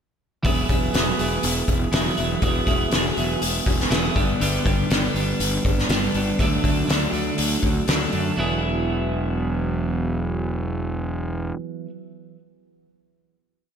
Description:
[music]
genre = quiet-loud alternative rock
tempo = 121 BPM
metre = 4/4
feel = straight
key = E mixolydian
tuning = A4 = 443 Hz
[part]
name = twelve-string electric guitar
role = arpeggios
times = 0.4-11.9 s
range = G2 to G#4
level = -24 LUFS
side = right 2 dB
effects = tape echo
[part]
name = fuzz fingered electric bass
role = bass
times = 0.4-11.5 s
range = E1 to F#2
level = -26 LUFS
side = equal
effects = overdrive
[part]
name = loose indie drum kit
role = drums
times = 0.4-8.2 s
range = hi-hat, kick drum, snare drum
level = -23 LUFS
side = left 1 dB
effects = none
[sound]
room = moderate lush hall reverb, RT60 2.1 s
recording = big arena sound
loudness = -20 LUFS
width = side -7 dB against mid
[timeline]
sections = 0.4-8.4 verse; 8.4-12.3 final chord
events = none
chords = 0.4 Eadd9; 4.2 G; 6.4 D; 8.4 Eadd9

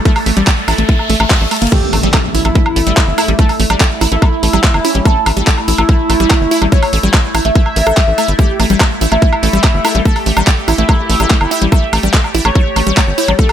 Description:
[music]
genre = psychedelic trance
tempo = 144 BPM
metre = 4/4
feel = straight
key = unclear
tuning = A4 = 439 Hz
[part]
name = overtone-sweeping drone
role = sustained chords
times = 0.0-13.5 s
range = A3 to A4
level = -22 LUFS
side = equal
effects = chorus, built-in reverb, sidechain pumping
[part]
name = wide unison pluck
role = riff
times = 0.0-13.5 s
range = G3 to Bb4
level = -18 LUFS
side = moving between left 2 dB and right 4 dB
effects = auto-pan, sidechain pumping, digital delay
[part]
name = riser and impact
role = sound effects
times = 0.0-3.4 s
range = none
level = -22 LUFS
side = equal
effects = none
[part]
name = electronic kick drum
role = drums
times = 0.1-13.5 s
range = none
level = -11 LUFS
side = equal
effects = overdrive, studio ambience
[part]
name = garage drum kit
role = drums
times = 0.1-13.5 s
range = crash cymbal, handclaps, hi-hat, woodblock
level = -17 LUFS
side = equal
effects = overdrive, studio ambience
[part]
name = tight sequencer bass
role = bass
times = 0.3-13.3 s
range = G1 to A1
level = -15 LUFS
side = equal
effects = none
[part]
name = overdriven synth lead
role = melody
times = 1.7-13.5 s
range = E4 to E5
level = -18 LUFS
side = right 1 dB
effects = distortion, chorus, phaser, sidechain pumping, ping-pong delay
[part]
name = formant-sweep wobble bass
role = second line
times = 3.2-5.2, 9.8-11.4 s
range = A3 to C#4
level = -28 LUFS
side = left 3 dB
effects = wide subtle chorus, sidechain pumping, high-pass filter, tape echo
[sound]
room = little or no reverb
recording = none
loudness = -10 LUFS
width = side -10 dB against mid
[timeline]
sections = 0.0-1.7 A section; 1.7-13.5 B section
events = riser 0.0-1.7; drum fill 1.5; drop 1.7-13.5; impact 1.7-3.4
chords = 0.0 A5

